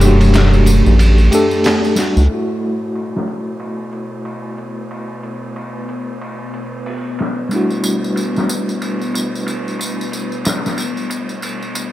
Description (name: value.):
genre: trip hop.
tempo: 92 BPM.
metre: 4/4.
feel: swing 60% on 16ths.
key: F# phrygian.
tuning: A4 = 441 Hz.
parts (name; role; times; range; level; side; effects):
rich cello; melody; 0.0-1.6 s; F#2; -16 LUFS; equal; tape echo.
mellow tine electric piano; accompaniment; 0.0-11.9 s; G3 to A4; -20 LUFS; left 1 dB; tremolo, low-pass filter, tape echo.
deep dark ambient pad; sustained chords; 0.0-11.9 s; A3 to B4; -25 LUFS; equal; chorus, built-in reverb.
round analog bass; bass; 0.0-2.3 s; E1 to C#2; -11 LUFS; equal; none.
tambourine; percussion; 0.0-2.3, 7.5-11.9 s; none; -28 LUFS; right 1 dB; none.
trip hop sampler-style drum kit; drums; 0.2-11.9 s; hi-hat, ride cymbal, snare drum; -24 LUFS; equal; low-pass filter on kick, low-pass filter on cymbals, low-pass filter on hats, low-pass filter on snare, low-pass filter on room.
room: little or no reverb.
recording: none.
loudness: -14 LUFS.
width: side -15 dB against mid.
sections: 0.0-2.3 A section; 2.3-11.9 B section.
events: break 1.0-2.3; filter sweep on tine electric piano 2.3-11.9.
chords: 0.0 Em11; 2.3 F#m7; 7.5 Em11.